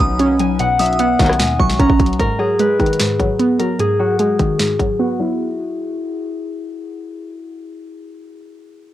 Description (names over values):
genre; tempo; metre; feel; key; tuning
hip hop, trap; 150 BPM; 4/4; half-time; G# minor; A4 = 438 Hz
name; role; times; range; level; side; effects
concert harp; melody; 0.0-7.8 s; E4 to A#5; -20 LUFS; left 2 dB; low-pass filter, cassette tape
glassy synth bell; second line; 0.0-2.2 s; C#6 to D#6; -25 LUFS; right 3 dB; chorus, cassette tape, tape echo
warbly dusty pluck; accompaniment; 0.0-5.4 s; G#2 to C#4; -18 LUFS; right 1 dB; chorus, phaser, low-pass filter, cassette tape
hollow soft pad; sustained chords; 0.0-2.2 s; C#4 to B4; -28 LUFS; right 2 dB; chorus, cassette tape
warm 808-style bass; bass; 0.0-2.2 s; A#1 to D#2; -22 LUFS; equal; none
trap drum kit; drums; 0.0-4.9 s; hi-hat, kick drum, rim click, snare drum; -19 LUFS; equal; cassette tape
warm brass ensemble; stabs; 1.2-1.3 s; D#2 to F#3; -29 LUFS; left 2 dB; none
room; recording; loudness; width
light reverb; home recording on cassette; -14 LUFS; side -13 dB against mid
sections
0.0-2.2 A section; 2.2-5.4 B section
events
filter sweep 2.2-5.4; silent gap 5.0-5.4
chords
0.0 Badd9; 2.2 G#m7